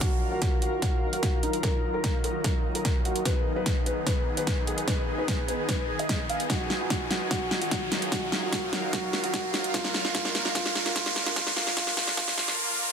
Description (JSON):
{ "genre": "heavy wobble dubstep", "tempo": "148 BPM", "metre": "4/4", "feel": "half-time", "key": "Eb harmonic minor", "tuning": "A4 = 441 Hz", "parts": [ { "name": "felt-muted upright piano", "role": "melody", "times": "0.0-12.6 s", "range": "Eb4 to F5", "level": "-33 LUFS", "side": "equal", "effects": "dub echo" }, { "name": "supersaw chords", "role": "sustained chords", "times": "0.0-12.9 s", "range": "D3 to Ab4", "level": "-36 LUFS", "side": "right 1 dB", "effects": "phaser, vintage 12-bit sampler grit, sidechain pumping, low-pass filter" }, { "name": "dubstep drum kit", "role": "drums", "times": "0.0-12.6 s", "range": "hi-hat, snare drum", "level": "-30 LUFS", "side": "equal", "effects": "none" }, { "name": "electronic kick drum", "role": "drums", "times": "0.0-12.3 s", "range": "none", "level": "-29 LUFS", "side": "equal", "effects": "none" }, { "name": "riser", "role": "sound effects", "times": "0.0-12.9 s", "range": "none", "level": "-33 LUFS", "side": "right 1 dB", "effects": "none" }, { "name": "granular cloud pad", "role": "texture", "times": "0.0-12.6 s", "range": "Gb3 to Ab5", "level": "-34 LUFS", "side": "left 1 dB", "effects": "built-in reverb, sidechain pumping" } ], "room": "light reverb", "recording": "dense, heavily limited modern master, high-pass filter", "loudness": "-25 LUFS", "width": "side -7 dB against mid", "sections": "0.0-12.9 A section", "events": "build-up 0.0-12.9; drum fill 0.0-12.6; riser 0.0-12.9; filter sweep on supersaw synth 0.0-12.9; filter sweep 0.0-12.9", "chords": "0.0 Ebmadd9; 3.3 Abm; 6.5 Ebmadd9; 9.7 Bb", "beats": "| 0.01 0.42 0.82 1.23 | 1.63 2.04 2.44 2.85 | 3.25 3.66 4.07 4.47 | 4.88 5.28 5.69 6.09 | 6.50 6.90 7.31 7.71 | 8.12 8.53 8.93 9.34 | 9.74 10.15 10.55 10.96 | 11.36 11.77 12.17 12.58" }